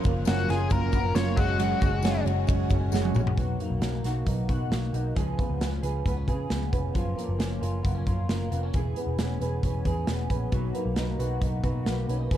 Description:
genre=jangly indie pop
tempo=134 BPM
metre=4/4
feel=straight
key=F# major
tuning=A4 = 440 Hz
part: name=fingerpicked steel-string acoustic guitar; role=accompaniment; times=0.0-12.4 s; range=B2 to B4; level=-35 LUFS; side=right 7 dB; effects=none
part: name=overdriven combo organ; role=accompaniment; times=0.0-3.2 s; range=F#3 to C#5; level=-34 LUFS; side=right 12 dB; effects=none
part: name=electric guitar through a small old amp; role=arpeggios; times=0.0-12.4 s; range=E3 to G#4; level=-33 LUFS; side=left 3 dB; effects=analog chorus
part: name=tambourine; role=percussion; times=0.0-3.3 s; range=none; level=-48 LUFS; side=left 17 dB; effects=none
part: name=vintage muted picked electric bass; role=bass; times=0.1-12.4 s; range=E1 to C#3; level=-28 LUFS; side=equal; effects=none
part: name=modern studio drum kit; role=drums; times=0.1-12.4 s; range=crash cymbal, hi-hat, kick drum, ride cymbal, snare drum, toms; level=-28 LUFS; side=equal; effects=none
part: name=octave-fuzz lead guitar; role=melody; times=0.3-2.2 s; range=F#4 to C#5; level=-31 LUFS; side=left 6 dB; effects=distortion
room=light reverb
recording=dark, warm production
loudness=-24 LUFS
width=side -11 dB against mid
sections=0.0-3.4 A section; 3.4-12.4 B section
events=drum fill 2.9-3.4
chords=0.0 F#maj7; 1.4 F#sus2; 3.4 Bmaj7; 5.2 C#7; 7.0 F#maj7; 8.7 E6; 10.5 Bmaj7

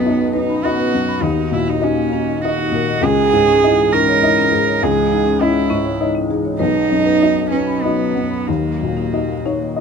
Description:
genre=neoclassical piano and strings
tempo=99 BPM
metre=3/4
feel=uneven beats, rubato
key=C# dorian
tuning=A4 = 441 Hz
part: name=warm cello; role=second line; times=0.0-9.8 s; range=A#3 to A#4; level=-17 LUFS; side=right 6 dB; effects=none
part: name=felt-muted upright piano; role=accompaniment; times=0.0-9.8 s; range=B1 to D#5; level=-18 LUFS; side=left 4 dB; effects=none
part: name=warbly tape-like pad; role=sustained chords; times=0.0-9.8 s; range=E3 to D#5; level=-26 LUFS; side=right 2 dB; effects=chorus, built-in reverb
part: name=marimba with soft mallets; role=arpeggios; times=0.3-9.7 s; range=C#4 to B5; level=-24 LUFS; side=left 4 dB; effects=none
room=light reverb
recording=minimal, uncompressed stereo recording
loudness=-14 LUFS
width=side -6 dB against mid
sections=0.0-9.8 A section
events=none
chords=0.0 B; 1.2 D#m; 3.0 C#madd9; 6.6 B; 8.5 D#m

